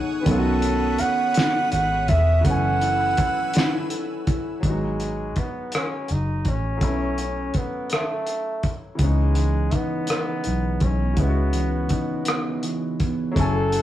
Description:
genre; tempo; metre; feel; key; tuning
slow six-eight R&B; 55 BPM (dotted quarters); 6/8; straight; unclear; A4 = 440 Hz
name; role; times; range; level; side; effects
mellow electric guitar; second line; 0.0-5.2, 9.0-13.8 s; B2 to C#5; -28 LUFS; right 1 dB; none
clear grand piano; accompaniment; 0.0-13.8 s; D#3 to G#5; -30 LUFS; left 1 dB; none
lush unison pad; sustained chords; 0.0-4.6, 13.6-13.8 s; A3 to E6; -35 LUFS; equal; chorus
warm flugelhorn; melody; 0.2-13.8 s; G#3 to F#5; -26 LUFS; right 1 dB; none
vintage muted fingered electric bass; bass; 0.3-13.8 s; E1 to C#2; -23 LUFS; equal; none
cloth-damped thuddy drum kit; drums; 0.3-13.8 s; hi-hat, kick drum, rim click, snare drum; -24 LUFS; equal; none
room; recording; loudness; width
moderate studio reverb, RT60 0.6 s; rough rehearsal-room recording; -20 LUFS; side -13 dB against mid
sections
0.0-4.6 A section; 4.6-13.4 B section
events
none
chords
0.3 B9; 2.4 F#m11; 4.6 G#m7; 6.8 B7sus4; 9.0 C#m9

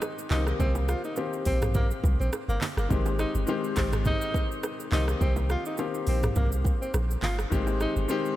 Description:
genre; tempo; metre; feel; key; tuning
afrobeats; 104 BPM; 4/4; swing 55% on 16ths; unclear; A4 = 445 Hz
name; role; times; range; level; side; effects
warm grand piano; accompaniment; 0.0-8.4 s; Db3 to G4; -32 LUFS; left 4 dB; none
afro-pop drum kit; drums; 0.0-8.4 s; handclaps, hi-hat, kick drum, rim click, shaker, toms; -30 LUFS; equal; none
bongos and congas; percussion; 0.0-8.2 s; none; -38 LUFS; right 4 dB; none
breathy tenor saxophone; melody; 0.3-7.9 s; Bb3 to F4; -34 LUFS; right 1 dB; tape echo
punchy sub bass; bass; 0.3-8.1 s; G1 to C2; -27 LUFS; equal; none
room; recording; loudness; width
moderate lush hall reverb, RT60 2.6 s; dreamy mix soaked in reverb; -25 LUFS; side -14 dB against mid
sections
0.0-8.4 A section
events
none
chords
0.3 Cm7; 2.9 Abmaj7; 4.9 Cm7; 7.5 Abmaj7

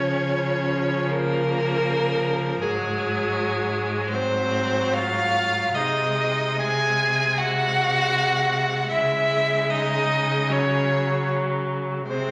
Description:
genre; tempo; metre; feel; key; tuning
classical, slow romantic movement for string quartet; 76 BPM; 4/4; uneven beats, rubato; C# minor from 5.8 s; A4 = 443 Hz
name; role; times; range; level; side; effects
rich violin; melody; 0.0-12.3 s; Ab3 to G#4; -30 LUFS; equal; none
rich violin; second line; 0.0-12.3 s; Ab4 to G#5; -26 LUFS; equal; none
warm viola; accompaniment; 0.0-12.3 s; F3 to G#3; -31 LUFS; equal; none
rich cello; bass; 0.0-12.3 s; Ab2 to Db3; -30 LUFS; equal; none
room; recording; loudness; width
wet recital hall reverb, RT60 1.4 s; vinyl crackle; -23 LUFS; mono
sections
0.0-12.3 A section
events
none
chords
0.0 Db; 2.6 Ab7; 5.8 G#7/B#; 8.9 C#m; 10.5 C#sus4

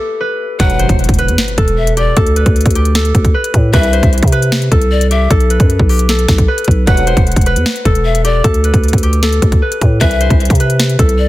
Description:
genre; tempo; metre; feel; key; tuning
hip hop, trap; 153 BPM; 4/4; half-time; E minor; A4 = 440 Hz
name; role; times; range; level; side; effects
concert harp; melody; 0.0-11.3 s; G4 to C5; -17 LUFS; left 1 dB; low-pass filter, tape echo
breathy pan flute; second line; 0.6-11.3 s; D5 to F#5; -21 LUFS; left 6 dB; tape echo
warm brass ensemble; stabs; 0.6-1.0, 3.7-4.1, 6.9-7.2, 10.0-10.4 s; B1 to F#3; -25 LUFS; right 5 dB; tape echo
growling 808-style bass; bass; 0.6-11.3 s; E1 to C3; -13 LUFS; equal; none
trap drum kit; drums; 0.6-11.2 s; hi-hat, kick drum, snare drum; -12 LUFS; equal; none
impact; sound effects; 0.7-2.2 s; none; -22 LUFS; equal; none
room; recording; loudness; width
studio reverb; dense, heavily limited modern master; -9 LUFS; side -16 dB against mid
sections
0.6-11.3 A section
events
stop 0.0-0.6; impact 0.6-2.2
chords
0.0 B5; 0.6 Emadd9; 2.2 D5; 3.7 C; 5.3 B5; 6.9 Emadd9; 8.4 D5; 10.0 C

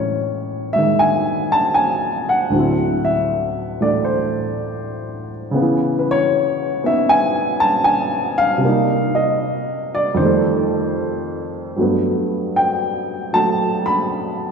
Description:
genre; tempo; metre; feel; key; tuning
solo jazz; 78 BPM; 4/4; swing 69% on 8ths, rubato; unclear; A4 = 440 Hz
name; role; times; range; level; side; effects
dark upright piano; solo; 0.0-14.5 s; D2 to B5; -16 LUFS; equal; none
room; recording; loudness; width
wet church reverb, RT60 3.2 s; recorded in a church or concert hall, nothing above 10.7 kHz; -16 LUFS; side -6 dB against mid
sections
0.0-14.5 A section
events
none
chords
0.0 Amaj7; 2.5 D9; 5.6 C#m9; 8.6 Cm7; 10.2 F9; 11.8 Gmaj9

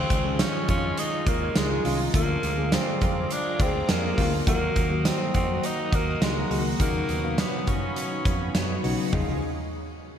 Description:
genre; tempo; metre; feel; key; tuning
1980s-style pop; 103 BPM; 4/4; straight; Db major; A4 = 440 Hz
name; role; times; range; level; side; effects
breathy tenor saxophone; melody; 0.0-8.6 s; Ab3 to Eb4; -30 LUFS; left 1 dB; shimmer reverb
FM electric piano with soft pad layer; accompaniment; 0.0-9.4 s; Cb3 to F5; -31 LUFS; left 3 dB; chorus, shimmer reverb
sweeping resonant pad; sustained chords; 0.0-9.4 s; F4 to Eb6; -37 LUFS; right 1 dB; chorus, shimmer reverb
direct-recorded clean electric guitar; riff; 0.0-9.4 s; Eb3 to Gb4; -34 LUFS; right 4 dB; analog chorus, shimmer reverb, ping-pong delay
mellow fretless electric bass; bass; 0.0-9.4 s; Cb2 to Gb2; -30 LUFS; equal; none
big rock drum kit; drums; 0.1-9.3 s; hi-hat, kick drum, snare drum, tambourine, toms; -27 LUFS; right 1 dB; gated reverb
mellow synth brass; stabs; 1.1-9.4 s; F3 to Db5; -38 LUFS; left 1 dB; chorus, shimmer reverb
room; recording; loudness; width
moderate lush hall reverb, RT60 2.2 s; bright 1980s-style digital production; -22 LUFS; side -8 dB against mid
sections
0.0-9.1 A section; 9.1-10.2 B section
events
none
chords
0.0 Dbadd9; 2.1 Bb7/D; 4.5 Ebm; 6.8 Cbadd9/Eb; 9.1 Dbadd9

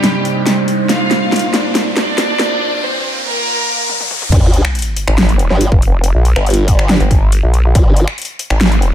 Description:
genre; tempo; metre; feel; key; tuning
heavy wobble dubstep; 140 BPM; 4/4; half-time; unclear; A4 = 445 Hz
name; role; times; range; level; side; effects
rich studio violin section; melody; 0.0-3.8 s; G3 to F5; -19 LUFS; right 1 dB; vintage 12-bit sampler grit, ping-pong delay
evolving wavetable pad; sustained chords; 0.0-2.6 s; Bb2 to C5; -20 LUFS; right 2 dB; chorus, built-in reverb, sidechain pumping
dubstep drum kit; drums; 0.0-8.9 s; crash cymbal, finger snaps, hi-hat, snare drum, toms; -17 LUFS; equal; small room ambience
riser and sub drop; sound effects; 0.0-6.0 s; none; -20 LUFS; equal; none
formant-sweep wobble bass; bass; 4.3-8.1 s; G1; -13 LUFS; equal; chorus, overdrive
electronic kick drum; drums; 4.3-7.8 s; none; -12 LUFS; equal; small room ambience
vowel-sweep wobble bass; bass; 5.1-8.9 s; F1 to Bb1; -12 LUFS; equal; chorus, overdrive
room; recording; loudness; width
light reverb, digital ambience; high-pass filter; -11 LUFS; side -10 dB against mid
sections
0.0-4.3 A section; 4.3-8.9 B section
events
build-up 0.0-4.3; drum fill 0.0-2.6, 3.9-4.3; riser 0.0-4.3; filter sweep on ambient pad 0.0-4.3; filter sweep 0.0-4.3; break 2.6-4.3; drop 4.3-8.9; impact 4.3-6.0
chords
0.0 Cmadd9; 0.9 Bbadd9; 2.6 N.C.

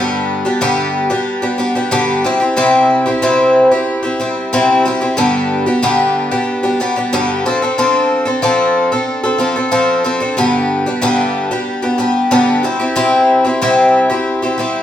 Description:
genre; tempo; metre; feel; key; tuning
rock; 92 BPM; 4/4; straight; G mixolydian; A4 = 438 Hz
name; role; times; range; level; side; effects
picked twelve-string acoustic guitar; solo; 0.0-14.8 s; G2 to A4; -12 LUFS; left 1 dB; none
room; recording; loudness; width
wet large studio reverb, RT60 0.9 s; band playing live in one room; -12 LUFS; side -10 dB against mid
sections
0.0-14.8 A section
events
none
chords
0.0 G; 2.2 C; 5.2 G; 7.4 F6; 10.4 G; 12.6 C

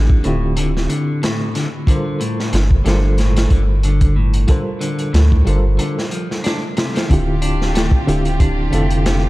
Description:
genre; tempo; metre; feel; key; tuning
trip hop; 92 BPM; 4/4; swing 55% on 16ths; D minor; A4 = 440 Hz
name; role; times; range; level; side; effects
reed electric piano; accompaniment; 0.0-9.3 s; D3 to C5; -22 LUFS; equal; tremolo, tape echo
clean electric guitar; arpeggios; 0.0-9.2 s; A2 to D4; -23 LUFS; left 2 dB; tape echo
soft dub sub bass; bass; 0.0-9.3 s; D1 to D2; -16 LUFS; equal; none
crunchy breakbeat drum kit; drums; 0.1-9.2 s; hi-hat, kick drum, snare drum; -18 LUFS; equal; none
rich studio violin section; sustained chords; 7.1-9.3 s; F4 to G4; -26 LUFS; right 1 dB; none
room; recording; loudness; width
studio reverb; dark, warm production; -14 LUFS; side -18 dB against mid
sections
0.0-7.1 A section; 7.1-9.3 B section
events
filter sweep on clean electric guitar 0.0-7.1; break 5.8-7.1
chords
0.0 Dm11; 1.9 Gm11; 7.1 Dm11

